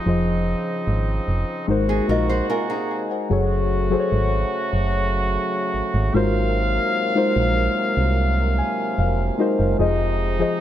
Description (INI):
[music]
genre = contemporary R&B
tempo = 74 BPM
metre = 4/4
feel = straight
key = unclear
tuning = A4 = 439 Hz
[part]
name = muted felt-like synth keys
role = accompaniment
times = 0.0-10.6 s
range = F3 to Bb5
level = -23 LUFS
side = left 3 dB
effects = chorus
[part]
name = mellow brass ensemble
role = sustained chords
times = 0.0-10.6 s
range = C3 to F5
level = -25 LUFS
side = right 1 dB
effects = none
[part]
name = solid FM bass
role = bass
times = 0.1-10.4 s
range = F1 to C2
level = -22 LUFS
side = right 1 dB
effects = none
[part]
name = nylon-string guitar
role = arpeggios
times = 1.9-3.3 s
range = Eb4 to C5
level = -27 LUFS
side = right 3 dB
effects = ping-pong delay
[sound]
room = light reverb, small room ambience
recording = none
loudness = -19 LUFS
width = side -11 dB against mid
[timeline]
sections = 0.0-3.3 A section; 3.3-10.6 B section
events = break 2.5-3.3; synth keys fill 8.2-9.8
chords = 0.1 Dbmaj9/F; 1.7 Ab9; 3.3 Gbmadd9; 6.1 Ab13; 9.8 Fm7